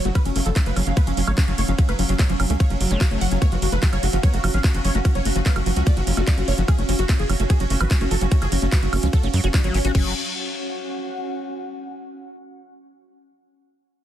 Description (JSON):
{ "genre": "psychedelic trance", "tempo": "147 BPM", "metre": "4/4", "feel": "straight", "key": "F# harmonic minor", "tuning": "A4 = 439 Hz", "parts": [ { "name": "pulsing gated texture", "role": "sustained chords", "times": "0.0-10.0 s", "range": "F#3 to E#5", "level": "-31 LUFS", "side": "right 2 dB", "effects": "chorus, built-in reverb, sidechain pumping" }, { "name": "warbly tape-like pad", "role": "texture", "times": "0.0-11.5 s", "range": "C#4 to F#5", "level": "-33 LUFS", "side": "right 1 dB", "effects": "chorus, built-in reverb, phaser, sidechain pumping" }, { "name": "wide unison lead", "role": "melody", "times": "0.1-10.1 s", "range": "C#4 to F#5", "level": "-28 LUFS", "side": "equal", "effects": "phaser, sidechain pumping, dub echo" }, { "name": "screaming distorted acid line", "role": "riff", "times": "0.1-10.1 s", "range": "E#3 to F#4", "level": "-29 LUFS", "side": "moving between left 6 dB and right 6 dB", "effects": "distortion, chorus, auto-pan, sidechain pumping, ping-pong delay" }, { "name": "tight sequencer bass", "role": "bass", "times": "0.1-10.1 s", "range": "F#1 to F#2", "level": "-22 LUFS", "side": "equal", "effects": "none" }, { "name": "techno drum kit", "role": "drums", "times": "0.1-10.0 s", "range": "crash cymbal, handclaps, hi-hat, ride cymbal, woodblock", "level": "-28 LUFS", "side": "right 2 dB", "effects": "studio reverb" }, { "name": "electronic kick drum", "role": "drums", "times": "0.2-10.0 s", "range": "none", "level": "-18 LUFS", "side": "equal", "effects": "studio reverb" }, { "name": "formant-sweep wobble bass", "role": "second line", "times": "3.4-6.6 s", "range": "B3 to E#4", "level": "-40 LUFS", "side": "left 4 dB", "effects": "none" } ], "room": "little or no reverb", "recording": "dense, heavily limited modern master, lossy compression artefacts", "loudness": "-18 LUFS", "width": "side -11 dB against mid", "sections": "0.0-9.9 A section; 9.9-11.6 B section", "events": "drop 0.0-9.9", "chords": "0.0 F#5" }